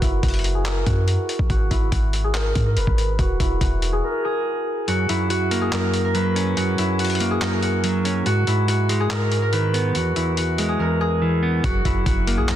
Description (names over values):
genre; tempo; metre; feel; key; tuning
hip hop, trap; 142 BPM; 4/4; half-time; unclear; A4 = 440 Hz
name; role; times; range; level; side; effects
concert harp; melody; 0.0-12.6 s; E4 to B4; -24 LUFS; equal; low-pass filter, tape echo
clean 808-style bass; bass; 0.0-4.0, 11.6-12.6 s; E1 to G#2; -22 LUFS; equal; none
boom bap sampler-style drum kit; drums; 0.0-12.6 s; handclaps, hi-hat, kick drum; -24 LUFS; equal; vintage 12-bit sampler grit
clean electric guitar; accompaniment; 4.9-12.6 s; E2 to C#4; -21 LUFS; right 1 dB; low-pass filter
room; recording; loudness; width
light reverb, digital ambience; dense, heavily limited modern master; -18 LUFS; side -11 dB against mid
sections
0.0-12.6 A section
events
filter sweep 0.0-4.9; break 4.0-4.9; kick muted 4.9-11.6; drums muted 10.8-11.6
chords
0.0 F#; 1.5 F#9; 3.2 E; 4.9 F#; 8.3 G#m; 9.9 E; 11.6 F#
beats
0.23 0.65 1.08 | 1.50 1.92 2.34 2.77 | 3.19 3.61 4.03 4.46 | 4.88 5.30 5.72 6.15 | 6.57 6.99 7.41 7.84 | 8.26 8.68 9.11 9.53 | 9.95 10.37 10.79 11.22 | 11.64 12.06 12.48